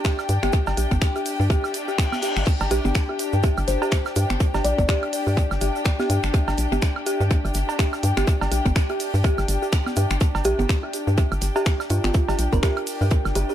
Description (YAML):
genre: minimal techno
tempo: 124 BPM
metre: 4/4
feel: swing 58% on 16ths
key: unclear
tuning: A4 = 440 Hz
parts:
  - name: dark detuned synth bell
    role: riff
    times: 0.0-13.4 s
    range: G4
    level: -29 LUFS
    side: right 1 dB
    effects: chorus, sidechain pumping, analog delay
  - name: electronic kick drum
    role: drums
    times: 0.0-13.2 s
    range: none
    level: -20 LUFS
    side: equal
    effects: overdrive
  - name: minimal click drum kit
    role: drums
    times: 0.0-13.5 s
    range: crash cymbal, finger snaps, hi-hat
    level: -31 LUFS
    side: left 1 dB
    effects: overdrive, tape echo
  - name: tube shaker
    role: percussion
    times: 0.0-13.5 s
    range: none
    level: -38 LUFS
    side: right 2 dB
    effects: tape echo
  - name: dark studio string section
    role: texture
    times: 0.0-13.5 s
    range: D4 to G5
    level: -29 LUFS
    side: left 3 dB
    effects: sidechain pumping
  - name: damped 70s drum kit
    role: drums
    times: 0.1-13.5 s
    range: hi-hat, snare drum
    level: -42 LUFS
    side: right 5 dB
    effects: none
  - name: woodblock, congas and cowbell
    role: percussion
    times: 0.2-13.3 s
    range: none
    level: -30 LUFS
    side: right 5 dB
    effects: analog delay
  - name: hollow knocking FM bass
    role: bass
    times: 0.3-13.4 s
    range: G1 to G2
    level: -23 LUFS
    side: equal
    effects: sidechain pumping
  - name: reverse cymbal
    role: sound effects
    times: 1.7-2.5 s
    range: none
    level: -32 LUFS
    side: left 5 dB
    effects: none
  - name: kalimba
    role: melody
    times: 2.7-4.9, 10.5-13.5 s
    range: F4 to D5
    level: -29 LUFS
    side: equal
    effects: tape echo
room: studio ambience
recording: echo-heavy mix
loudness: -19 LUFS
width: side -11 dB against mid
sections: 0.0-13.5 A section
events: reverse cymbal 1.7-2.5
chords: 0.0 G5